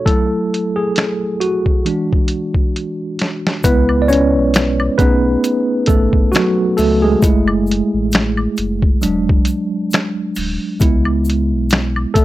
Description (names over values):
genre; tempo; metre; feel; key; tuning
lo-fi hip hop; 67 BPM; 4/4; swing 56% on 16ths; F# minor; A4 = 440 Hz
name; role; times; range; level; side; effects
tine electric piano; accompaniment; 0.0-12.2 s; E3 to D5; -16 LUFS; right 1 dB; medium stereo tremolo, cassette tape, low-pass filter
lo-fi sampler-style drum kit; drums; 0.1-12.2 s; finger snaps, hi-hat, kick drum, snare drum; -15 LUFS; equal; none
sub bass with octave; bass; 3.6-12.2 s; D1 to C#2; -20 LUFS; equal; none
egg shaker and woodblock; percussion; 3.6-12.2 s; none; -27 LUFS; left 2 dB; none
room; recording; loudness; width
little or no reverb; dry, gritty hardware recording, transformer saturation; -13 LUFS; side -15 dB against mid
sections
0.0-3.6 A section; 3.6-12.2 B section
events
tine electric piano solo 0.0-3.6, 3.6-12.2; drum fill 2.7-3.6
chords
0.1 F#m7; 1.9 E9; 3.6 C#m7; 5.0 B13; 7.2 F#m9; 9.0 E9; 10.8 C#m7